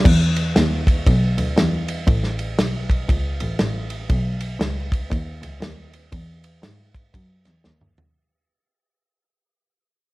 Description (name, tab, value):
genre	uptempo gospel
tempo	119 BPM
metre	4/4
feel	swing 62% on 8ths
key	E major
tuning	A4 = 440 Hz
part	dark double bass	bass	0.0-8.1 s	A1 to G#2	-22 LUFS	equal	none
part	warm soul drum kit	drums	0.1-8.1 s	crash cymbal, kick drum, ride cymbal, snare drum, toms	-20 LUFS	equal	none
room	light reverb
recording	vinyl crackle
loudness	-18 LUFS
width	side -20 dB against mid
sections	0.1-8.2 A section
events	fade-out 0.1-8.2; drum fill 7.6-8.2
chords	none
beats	| 0.06 0.56 1.07 1.57 | 2.08 2.58 3.09 3.60 | 4.10 4.61 5.11 5.62 | 6.13 6.63 7.14 7.64